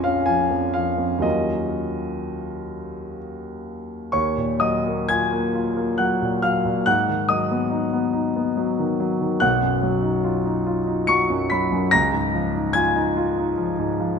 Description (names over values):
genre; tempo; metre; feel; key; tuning
classical, impressionist solo piano; 60-74 BPM; 3/4; rubato; Eb minor; A4 = 440 Hz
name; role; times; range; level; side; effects
warm concert grand piano; solo; 0.0-14.2 s; Bb1 to Db7; -20 LUFS; left 1 dB; none
room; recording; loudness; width
wet scoring stage reverb, RT60 2.1 s; none; -19 LUFS; side -6 dB against mid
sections
0.0-4.1 A section; 4.1-14.2 A section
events
none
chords
0.0 Bbm; 1.2 Ebm9; 6.9 Abm7; 9.4 B; 11.9 Dbadd9